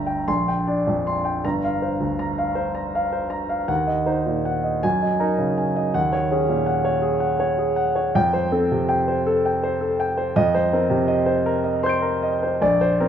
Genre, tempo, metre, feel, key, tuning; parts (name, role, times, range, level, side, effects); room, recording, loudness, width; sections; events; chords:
classical, impressionist solo piano; 54 BPM (dotted quarters); 6/8; rubato; A4 = 439 Hz
clear concert grand piano; solo; 0.0-13.1 s; G1 to D7; -19 LUFS; equal
moderate recital hall reverb, RT60 1.4 s; minimal, uncompressed stereo recording; -19 LUFS; side -9 dB against mid
0.0-13.1 A section
0.3 Bb69; 1.4 Gm7; 3.7 Ebm6; 4.8 F#69; 5.9 Ebm7; 8.1 Fadd9; 10.4 Cm9/F